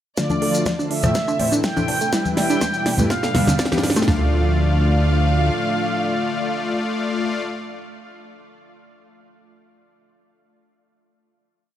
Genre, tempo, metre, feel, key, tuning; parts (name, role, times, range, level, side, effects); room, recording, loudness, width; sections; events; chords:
progressive house; 123 BPM; 4/4; straight; D dorian; A4 = 441 Hz
expressive synth lead; melody; 0.2-7.4 s; D5 to G5; -26 LUFS; right 2 dB; lush chorus, tape echo
dark symphonic violin section; second line; 0.2-7.4 s; D5 to G5; -32 LUFS; right 1 dB; sidechain pumping, tape echo
lush unison pad; sustained chords; 0.2-7.4 s; A2 to A4; -27 LUFS; right 1 dB; chorus, sidechain pumping
analog pluck; arpeggios; 0.2-4.3 s; D3 to D5; -26 LUFS; right 1 dB; chorus, sidechain pumping, tape echo
soft supersaw; stabs; 0.2-7.4 s; G2 to G5; -24 LUFS; left 3 dB; sidechain pumping, low-pass filter, tape echo
big-room dance drum kit; drums; 0.2-4.2 s; kick drum, snare drum, toms; -25 LUFS; right 1 dB; high-pass filter on kick, high-pass filter on snare, high-pass filter on toms
big-room dance drum kit; drums; 0.2-4.1 s; hi-hat, rim click, snare drum; -25 LUFS; right 1 dB
maracas; percussion; 0.2-4.1 s; -31 LUFS; left 1 dB
congas and woodblock; percussion; 0.3-4.1 s; -25 LUFS; left 1 dB; sidechain pumping on perc
fat analog bass; bass; 0.4-5.5 s; E1 to A2; -21 LUFS; equal; sidechain pumping, high-pass filter
light reverb; -17 LUFS; side -11 dB against mid
0.2-4.1 build; 4.1-8.0 final chord
build-up 0.2-4.1; drum fill 0.2-4.1; filter sweep on synth pluck 0.2-4.1; filter sweep on supersaw synth 0.2-4.1
0.2 Dm; 1.2 Am; 2.1 Em; 3.1 G; 4.1 Dm